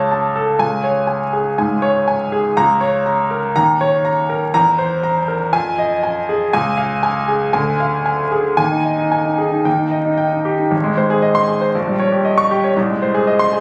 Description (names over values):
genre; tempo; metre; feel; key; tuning
classical, virtuoso piano study; 120 BPM; 4/4; rubato; Ab major; A4 = 440 Hz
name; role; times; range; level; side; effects
clear grand piano; solo; 0.0-13.6 s; Ab1 to Db6; -17 LUFS; equal; none
room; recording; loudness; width
moderate recital hall reverb, RT60 1.4 s; recorded on a phone in the room, studio ambience, vinyl crackle, compression; -17 LUFS; mono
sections
0.0-10.7 A section; 10.7-13.6 B section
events
none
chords
0.0 A/C#; 0.6 Db5; 2.6 Bbm/Db; 3.6 Eb5; 4.5 C7/E; 5.5 Fm7; 6.5 Db; 7.5 Ddim; 8.6 Ab5/Eb; 9.7 Eb; 10.7 Ab; 11.7 Eb7/Bb; 12.7 Ab/C